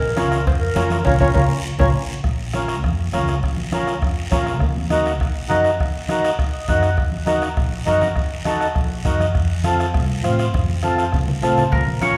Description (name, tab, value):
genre	latin, cumbia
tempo	203 BPM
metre	4/4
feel	straight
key	Bb harmonic minor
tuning	A4 = 440 Hz
part	mellow clarinet	second line	0.0-1.9 s	Bb4 to Db5	-26 LUFS	equal	none
part	upright bass	bass	0.0-12.2 s	Bb1 to Bb2	-26 LUFS	equal	none
part	mellow accordion	accompaniment	0.2-12.2 s	C4 to Gb5	-24 LUFS	equal	none
part	bombo	percussion	0.2-12.2 s	none	-25 LUFS	equal	none
part	congas	percussion	0.2-12.2 s	none	-28 LUFS	equal	none
part	cowbell and timbales	percussion	0.2-1.9, 11.7-12.2 s	none	-35 LUFS	equal	none
part	guiro	percussion	0.2-12.2 s	none	-36 LUFS	equal	none
part	clean electric guitar	melody	11.7-12.2 s	Bb4 to Db5	-23 LUFS	equal	spring reverb
room	wet large studio reverb, RT60 1.2 s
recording	band playing live in one room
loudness	-19 LUFS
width	mono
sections	0.0-2.2 A section; 2.2-11.7 B section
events	clarinet solo 0.0-2.2; band accent 1.1-2.2; drum fill 1.4-2.2, 10.5-11.7; accordion fill 6.4-7.0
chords	0.0 Bbm; 4.6 Ebm; 9.4 F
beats	0.17 0.47 0.76 | 1.06 1.35 1.65 1.94 | 2.24 2.54 2.83 3.13 | 3.42 3.72 4.02 4.31 | 4.61 4.91 5.20 5.50 | 5.80 6.09 6.39 6.69 | 6.98 7.28 7.58 7.87 | 8.17 8.46 8.76 9.06 | 9.35 9.65 9.95 10.24 | 10.54 10.83 11.13 11.42 | 11.72 12.02